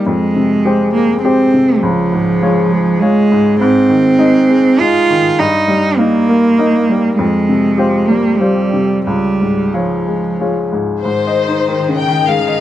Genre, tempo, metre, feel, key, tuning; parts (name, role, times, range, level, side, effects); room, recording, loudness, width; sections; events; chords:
neoclassical piano and strings; 89-104 BPM; 3/4; rubato; Ab major; A4 = 440 Hz
clear cello; second line; 0.0-12.6 s; Eb3 to F4; -13 LUFS; right 2 dB
bright upright piano; accompaniment; 0.0-12.6 s; Db2 to Eb5; -15 LUFS; left 3 dB
rich chamber violin section; melody; 11.0-12.6 s; C5 to G5; -15 LUFS; left 6 dB
light reverb; dry, close 1970s-style studio recording; -10 LUFS; side -12 dB against mid
0.0-11.0 A section; 11.0-12.6 B section
0.1 Fmadd9; 1.8 Db; 3.6 Ab; 5.4 Eb/G; 7.2 Fmadd9; 9.1 Db; 11.0 Ab